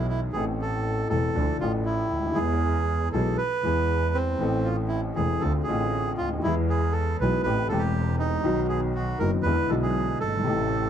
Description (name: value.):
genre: tango.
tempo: 119 BPM.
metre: 4/4.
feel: rubato.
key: unclear.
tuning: A4 = 440 Hz.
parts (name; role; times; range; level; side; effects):
bandoneon; melody; 0.0-10.9 s; C4 to B4; -28 LUFS; right 4 dB; tape echo.
warm upright piano; accompaniment; 0.0-10.9 s; E1 to A4; -27 LUFS; left 3 dB; none.
clear double bass; bass; 0.0-10.9 s; E1 to E2; -27 LUFS; right 1 dB; none.
room: light reverb.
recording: none.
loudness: -23 LUFS.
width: side -9 dB against mid.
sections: 0.0-10.9 A section.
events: none.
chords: 0.4 Am; 1.4 Dmadd9; 2.4 E; 4.4 Am; 5.4 Dm7; 6.4 E; 7.5 Am7; 8.5 B; 9.5 E7.